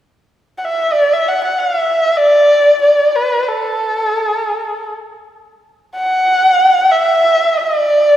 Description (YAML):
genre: chinese traditional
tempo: free time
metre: none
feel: none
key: D gong mode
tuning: A4 = 440 Hz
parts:
  - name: dark erhu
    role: melody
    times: 0.6-8.2 s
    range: A4 to F#5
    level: -11 LUFS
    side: equal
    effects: none
room: wet scoring stage reverb, RT60 1.9 s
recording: heard from further back in the room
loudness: -11 LUFS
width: side -11 dB against mid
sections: 0.2-8.2 A section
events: none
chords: none